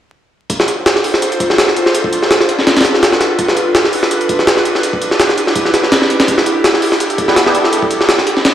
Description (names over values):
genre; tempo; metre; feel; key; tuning
drum and bass, jungle; 166 BPM; 4/4; swing 54% on 16ths; D dorian; A4 = 441 Hz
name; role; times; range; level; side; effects
airy breathy pad; sustained chords; 0.7-8.5 s; Db4 to C5; -16 LUFS; right 1 dB; chorus
jungle sampler-style drum kit; drums; 0.5-8.5 s; hi-hat, kick drum, snare drum; -12 LUFS; equal; high-pass filter on hats, high-pass filter on kick, high-pass filter on snare, high-pass filter on room
band-passed chord stab; stabs; 7.3-7.6 s; B3 to G4; -17 LUFS; equal; phaser, ensemble chorus, dub echo
room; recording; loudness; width
wet echo chamber reverb, RT60 1.5 s, digital ambience; played on a big sound system in a bare room, stone room reverb, vinyl crackle; -10 LUFS; side -10 dB against mid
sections
0.5-8.5 A section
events
none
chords
0.5 Dm7; 4.8 Em7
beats
| 0.50 0.86 1.22 1.58 | 1.94 2.31 2.67 3.03 | 3.39 3.75 4.11 4.47 | 4.84 5.20 5.56 5.92 | 6.28 6.64 7.00 7.37 | 7.73 8.09 8.45